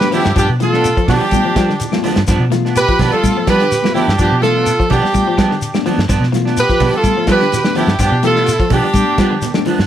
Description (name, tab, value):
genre	afrobeat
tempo	126 BPM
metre	4/4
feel	swing 54% on 16ths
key	G mixolydian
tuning	A4 = 440 Hz
part	warm horn section	melody	0.0-9.6 s	G4 to B4	-16 LUFS	right 1 dB	none
part	rich erhu	second line	0.0-9.6 s	D4 to G4	-21 LUFS	right 4 dB	none
part	mellow reed electric piano	accompaniment	0.0-9.8 s	A3 to G4	-21 LUFS	left 14 dB	none
part	warm soul drum kit	drums	0.0-9.9 s	hi-hat, kick drum, snare drum	-19 LUFS	equal	none
part	claves	percussion	0.0-9.7 s	none	-33 LUFS	left 14 dB	none
part	congas	percussion	0.0-9.9 s	none	-24 LUFS	right 13 dB	none
part	electric guitar at the edge of break-up	arpeggios	0.1-9.8 s	D3 to G3	-23 LUFS	left 7 dB	wide subtle chorus
part	electric guitar at the edge of break-up	stabs	0.1-9.8 s	F3 to D4	-22 LUFS	right 5 dB	lush chorus
part	shekere	percussion	0.1-9.8 s	none	-26 LUFS	left 3 dB	none
part	vintage muted fingered electric bass	bass	0.3-9.9 s	G2 to G3	-17 LUFS	equal	none
room	moderate studio reverb, RT60 0.7 s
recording	none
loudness	-12 LUFS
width	side -10 dB against mid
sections	0.0-9.9 A section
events	none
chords	0.0 G7